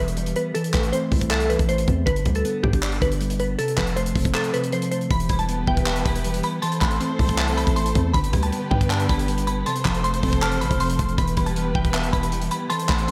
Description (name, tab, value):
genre	hip hop, trap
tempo	158 BPM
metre	4/4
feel	half-time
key	unclear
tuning	A4 = 440 Hz
part	glassy wavetable pluck	melody	0.0-13.1 s	G4 to C6	-30 LUFS	equal	chorus, low-pass filter, delay
part	mellow electric guitar	accompaniment	0.0-13.1 s	C3 to E5	-29 LUFS	equal	analog chorus, low-pass filter
part	hard-hitting 808-style bass	bass	0.0-13.1 s	E1 to G2	-27 LUFS	equal	none
part	tight funk drum kit	drums	0.1-13.1 s	handclaps, hi-hat, kick drum	-28 LUFS	equal	none
part	dark symphonic string section	sustained chords	5.1-13.1 s	D3 to C5	-32 LUFS	equal	none
part	dark detuned synth bell	second line	5.3-13.1 s	A5 to F6	-34 LUFS	equal	chorus, tremolo, delay
room	moderate lush hall reverb, RT60 1.6 s, small room ambience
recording	dreamy mix soaked in reverb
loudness	-22 LUFS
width	mono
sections	0.0-5.1 A section; 5.1-13.1 B section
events	kick muted 4.3-5.1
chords	0.0 Em; 0.5 Am; 2.1 G; 3.6 F; 5.1 Em; 6.6 Am; 8.1 G; 9.7 F; 11.2 Em